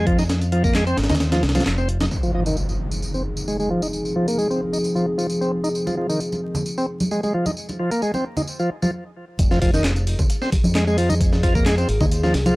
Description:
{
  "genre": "breakbeat, breaks",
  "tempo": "132 BPM",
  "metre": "4/4",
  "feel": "straight",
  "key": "F minor",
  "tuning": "A4 = 440 Hz",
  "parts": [
    { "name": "bright tonewheel organ", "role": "riff", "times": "0.0-12.5 s", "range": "Eb3 to Eb4", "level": "-23 LUFS", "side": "equal", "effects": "overdrive, slow rotary speaker, tube saturation, vintage 12-bit sampler grit, low-pass filter, tape echo" },
    { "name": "fingered electric bass with an envelope filter", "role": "bass", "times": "0.0-2.1, 9.4-12.5 s", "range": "F1 to F2", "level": "-21 LUFS", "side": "equal", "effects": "none" },
    { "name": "breakbeat sampler-style drum kit", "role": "drums", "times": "0.1-2.1, 9.4-12.5 s", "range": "hi-hat, kick drum, snare drum", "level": "-21 LUFS", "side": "equal", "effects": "none" },
    { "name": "garage drum kit", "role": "drums", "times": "0.2-12.5 s", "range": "handclaps, hi-hat, tambourine", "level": "-32 LUFS", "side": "equal", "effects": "none" },
    { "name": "congas", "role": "percussion", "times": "0.2-2.1, 5.9-12.5 s", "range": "none", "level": "-25 LUFS", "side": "right 1 dB", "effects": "none" },
    { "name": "dark analog pad", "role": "sustained chords", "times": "2.1-12.6 s", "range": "F3 to Ab4", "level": "-27 LUFS", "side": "equal", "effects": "chorus, sidechain pumping" },
    { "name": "impact", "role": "sound effects", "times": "2.1-3.9 s", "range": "none", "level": "-28 LUFS", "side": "equal", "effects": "none" }
  ],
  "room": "light reverb",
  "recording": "dry, gritty hardware recording, vinyl crackle",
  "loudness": "-18 LUFS",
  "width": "side -21 dB against mid",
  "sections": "0.0-2.1 A section; 2.1-9.4 B section; 9.4-12.6 C section",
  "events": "impact 2.1-3.9; stop 8.9-9.4; drop 9.4-12.6",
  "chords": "0.0 Fm7"
}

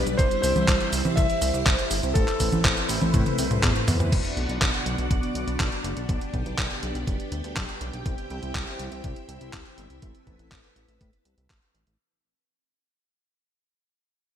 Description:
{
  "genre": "italo disco",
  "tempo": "122 BPM",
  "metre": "4/4",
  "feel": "straight",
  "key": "unclear",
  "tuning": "A4 = 441 Hz",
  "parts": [
    { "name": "warm electric grand piano", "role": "melody", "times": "0.0-3.8 s", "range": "A4 to E5", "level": "-28 LUFS", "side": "left 1 dB", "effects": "lush chorus, ping-pong delay" },
    { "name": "string machine, full ensemble", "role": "sustained chords", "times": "0.0-12.0 s", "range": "G3 to G5", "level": "-30 LUFS", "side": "equal", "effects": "phaser, ensemble chorus" },
    { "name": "chorused synth bass", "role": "bass", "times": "0.0-12.0 s", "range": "F#1 to A2", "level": "-29 LUFS", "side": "equal", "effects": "none" },
    { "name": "detuned 8-bit digital drum machine", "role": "drums", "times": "0.1-12.0 s", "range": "cabasa, congas, crash cymbal, handclaps, hi-hat, toms", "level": "-26 LUFS", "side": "equal", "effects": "gated reverb" },
    { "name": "electronic kick drum", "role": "drums", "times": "0.2-11.6 s", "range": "none", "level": "-26 LUFS", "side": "equal", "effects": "none" }
  ],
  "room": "moderate lush hall reverb, RT60 1.9 s",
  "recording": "bright 1980s-style digital production",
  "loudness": "-22 LUFS",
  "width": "side -9 dB against mid",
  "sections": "0.0-4.1 A section; 4.1-12.0 B section",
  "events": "drum fill 3.1-4.1; fade-out 4.1-12.0",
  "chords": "0.2 C; 2.2 Amadd9; 4.1 Bm; 6.1 G/B; 8.1 C; 10.0 Amadd9"
}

